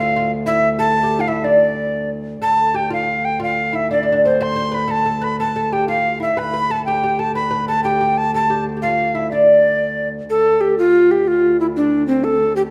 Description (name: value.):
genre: medieval dance.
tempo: 122 BPM (dotted quarters).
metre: 6/8.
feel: straight.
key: D dorian.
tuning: A4 = 441 Hz.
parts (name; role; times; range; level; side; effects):
tenor recorder; melody; 0.0-12.6 s; C4 to C6; -19 LUFS; equal; none.
oud; second line; 0.0-10.1 s; C4 to C5; -23 LUFS; equal; none.
rich viola da gamba; drone; 0.0-12.7 s; D2; -28 LUFS; equal; none.
room: wet recital hall reverb, RT60 1.7 s.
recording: none.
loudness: -17 LUFS.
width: mono.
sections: 0.0-2.4 A section; 2.4-10.3 B section; 10.3-12.7 B section.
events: none.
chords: none.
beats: | 0.45 0.94 | 1.44 1.94 | 2.43 2.92 | 3.42 3.91 | 4.41 4.90 | 5.39 5.88 | 6.37 6.86 | 7.35 7.84 | 8.33 8.82 | 9.31 9.80 | 10.29 10.77 | 11.26 11.75 | 12.23.